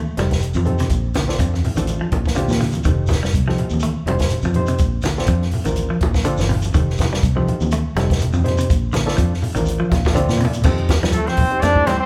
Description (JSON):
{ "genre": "afrobeat", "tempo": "123 BPM", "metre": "4/4", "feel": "swing 55% on 16ths", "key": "F mixolydian", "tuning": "A4 = 438 Hz", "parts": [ { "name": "clean electric guitar", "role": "arpeggios", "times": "0.0-12.0 s", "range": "C3 to A3", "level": "-27 LUFS", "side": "equal", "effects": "none" }, { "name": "fingered electric bass", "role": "bass", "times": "0.0-12.0 s", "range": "F1 to F3", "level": "-24 LUFS", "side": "equal", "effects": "none" }, { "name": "barky reed electric piano", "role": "accompaniment", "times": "0.2-11.9 s", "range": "C4 to F5", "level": "-29 LUFS", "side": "equal", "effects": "none" }, { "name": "compact cocktail drum kit", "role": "drums", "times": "0.2-12.0 s", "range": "crash cymbal, hi-hat, kick drum, snare drum", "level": "-24 LUFS", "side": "equal", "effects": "none" }, { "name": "congas", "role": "percussion", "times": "0.2-12.0 s", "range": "none", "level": "-27 LUFS", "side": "equal", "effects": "none" }, { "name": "shekere", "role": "percussion", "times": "0.3-12.0 s", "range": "none", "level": "-32 LUFS", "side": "equal", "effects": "none" }, { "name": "bright trumpet", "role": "second line", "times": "11.1-12.1 s", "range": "A4 to D5", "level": "-27 LUFS", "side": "equal", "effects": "none" }, { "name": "brilliant trombone", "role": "melody", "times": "11.2-12.1 s", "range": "A3 to D4", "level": "-20 LUFS", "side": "equal", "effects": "none" } ], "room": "wet large studio reverb, RT60 1.3 s", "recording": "band playing live in one room", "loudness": "-19 LUFS", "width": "mono", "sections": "0.0-10.7 A section; 10.7-12.1 B section", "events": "reed electric piano fill 9.7-10.7; drum fill 10.0-10.7", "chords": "0.0 F9; 0.9 Bbmaj9; 2.9 F9; 4.8 Bbmaj9; 6.8 F9; 8.7 Bbmaj9; 10.7 F9", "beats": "0.42 | 0.91 1.40 1.89 2.37 | 2.86 3.35 3.84 4.32 | 4.81 5.30 5.78 6.27 | 6.76 7.25 7.73 8.22 | 8.71 9.20 9.68 10.17 | 10.66 11.15 11.63" }